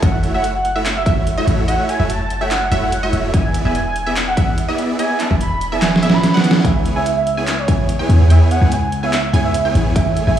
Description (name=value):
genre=future bass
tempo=145 BPM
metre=4/4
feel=half-time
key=unclear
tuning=A4 = 440 Hz
part: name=warm velvety synth lead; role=melody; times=0.0-10.4 s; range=C#5 to B5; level=-22 LUFS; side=right 2 dB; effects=chorus, sidechain pumping, dub echo
part: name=wide unison pluck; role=arpeggios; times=0.0-10.4 s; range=E5 to G#5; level=-27 LUFS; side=right 2 dB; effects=sidechain pumping
part: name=supersaw chords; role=riff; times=0.0-10.4 s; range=A3 to G#5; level=-22 LUFS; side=right 1 dB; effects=sidechain pumping
part: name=warm 808-style bass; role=bass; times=0.0-10.4 s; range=D1 to E2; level=-18 LUFS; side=equal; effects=sidechain pumping
part: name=dubstep drum kit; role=drums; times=0.0-10.4 s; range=handclaps, hi-hat, snare drum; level=-19 LUFS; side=right 2 dB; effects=overdrive
part: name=electronic kick drum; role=drums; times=0.0-10.0 s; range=none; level=-17 LUFS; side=equal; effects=overdrive
part: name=swell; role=sound effects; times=5.9-6.6 s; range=none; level=-27 LUFS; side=right 1 dB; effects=none
room=light reverb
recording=played on a big sound system in a bare room, large studio reverb, studio reverb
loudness=-14 LUFS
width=side -10 dB against mid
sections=0.0-10.4 A section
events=drum fill 5.8-6.6; swell 5.9-6.6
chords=0.0 F#m7; 3.3 E7; 6.6 C#m7